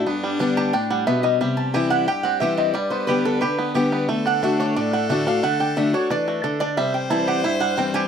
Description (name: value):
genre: bluegrass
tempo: 179 BPM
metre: 4/4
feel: straight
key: G major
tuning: A4 = 441 Hz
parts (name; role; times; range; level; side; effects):
- clear fiddle; second line; 0.0-8.1 s; D4 to C5; -30 LUFS; left 3 dB; none
- picked acoustic archtop guitar; accompaniment; 0.0-8.1 s; G2 to G4; -22 LUFS; left 3 dB; none
- bluegrass banjo; arpeggios; 0.0-8.1 s; G3 to G4; -26 LUFS; right 4 dB; none
- lap resonator guitar; melody; 0.6-8.1 s; F#4 to A5; -23 LUFS; right 2 dB; none
room: moderate booth ambience, RT60 0.2 s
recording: dry, close 1970s-style studio recording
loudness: -19 LUFS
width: side -7 dB against mid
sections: 0.0-1.4 A section; 1.4-8.1 A section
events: resonator guitar played with a steel bar solo 0.0-8.1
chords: 0.1 G; 1.4 C; 2.8 G; 4.1 D; 6.8 C